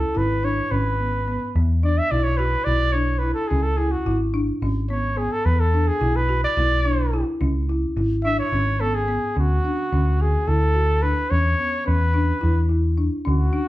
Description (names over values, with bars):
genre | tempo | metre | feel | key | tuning
progressive instrumental, band music in an uneven meter | 215 BPM (eighths) | 7/8 | straight | E mixolydian | A4 = 440 Hz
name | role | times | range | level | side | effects
mellow trumpet | melody | 0.0-13.7 s | F#4 to E5 | -24 LUFS | equal | none
folk marimba with medium mallets | arpeggios | 0.0-13.7 s | B3 to F#4 | -26 LUFS | left 1 dB | none
hollow-body short-scale picked electric bass | bass | 0.0-13.5 s | G#1 to E2 | -21 LUFS | equal | none
room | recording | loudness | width
wet large studio reverb, RT60 0.9 s | band playing live in one room | -19 LUFS | side -16 dB against mid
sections
0.0-9.4 A section; 9.4-13.7 B section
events
trumpet solo 0.0-9.4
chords
0.0 C#7(no3) (rootless); 1.6 E5; 3.5 C#m7; 5.5 E5; 7.4 C#m7; 9.4 Dmaj7; 11.3 E5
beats
0.16 0.44 0.72 1.00 1.28 | 1.56 1.84 2.12 2.40 2.67 2.95 3.23 | 3.51 3.79 4.07 4.35 4.63 4.91 5.19 | 5.46 5.74 6.02 6.30 6.58 6.86 7.14 | 7.42 7.70 7.97 8.25 8.53 8.81 9.09 | 9.37 9.65 9.92 10.20 10.48 10.76 11.04 | 11.32 11.60 11.87 12.15 12.43 12.71 12.99 | 13.27 13.54